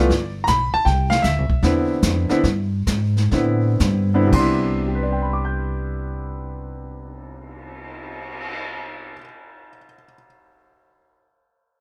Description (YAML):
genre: jazz piano trio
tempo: 111-158 BPM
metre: 4/4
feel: swing 66% on 8ths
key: C major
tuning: A4 = 441 Hz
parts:
  - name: clear grand piano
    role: melody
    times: 0.0-10.3 s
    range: C3 to G6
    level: -24 LUFS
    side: equal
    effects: none
  - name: upright bass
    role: bass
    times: 0.0-9.1 s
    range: G1 to A2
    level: -24 LUFS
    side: equal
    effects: none
  - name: jazz brush drum kit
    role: drums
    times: 0.1-8.6 s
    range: brushed snare drum, crash cymbal, cymbal swell, hi-hat, kick drum, snare drum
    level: -29 LUFS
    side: equal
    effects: none
room: light reverb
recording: none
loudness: -20 LUFS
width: mono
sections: 0.0-4.3 A section; 4.3-8.7 B section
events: slowing down 0.9-4.3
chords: 0.1 G; 0.9 Cmaj9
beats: 0.10 0.48 | 0.86 1.25 1.63 2.03 | 2.44 2.88 3.33 3.81 | 4.33 4.88 5.42 5.96 | 6.50 7.04 7.59 8.13